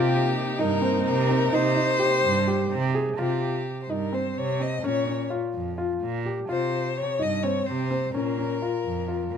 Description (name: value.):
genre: contemporary instrumental, chamber music in an uneven meter.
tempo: 254 BPM (eighths).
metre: 7/8.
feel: straight.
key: C phrygian.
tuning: A4 = 440 Hz.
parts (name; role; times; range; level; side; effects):
rich violin; melody; 0.0-9.4 s; G4 to Eb5; -27 LUFS; left 4 dB; none.
warm studio string section; sustained chords; 0.0-3.2 s; C3 to Eb4; -32 LUFS; right 2 dB; none.
warm concert grand piano; arpeggios; 0.0-9.4 s; C4 to Ab4; -27 LUFS; left 2 dB; none.
clear cello; bass; 0.0-9.4 s; F2 to C3; -28 LUFS; right 4 dB; none.
room: moderate studio reverb, RT60 0.9 s.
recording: none.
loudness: -23 LUFS.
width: side -7 dB against mid.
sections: 0.0-3.2 A section; 3.2-9.4 B section.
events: none.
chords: 0.0 Cm7; 3.2 C5; 4.8 Bbm; 6.5 C5; 8.1 Bbm.